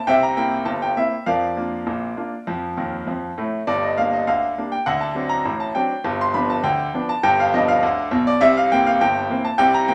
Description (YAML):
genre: ragtime piano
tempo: 101 BPM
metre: 2/4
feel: straight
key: unclear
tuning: A4 = 440 Hz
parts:
  - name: bright grand piano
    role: solo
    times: 0.0-9.9 s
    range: G1 to C6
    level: -20 LUFS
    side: equal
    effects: none
room: moderate large studio reverb, RT60 1.0 s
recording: none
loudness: -21 LUFS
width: mono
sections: 0.0-3.7 A section; 3.7-9.9 A section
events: grand piano fill 2.8-3.7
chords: 0.0 C7; 1.3 Bb/F; 2.5 F; 3.7 Gm; 4.9 D7; 6.0 G7; 8.4 C7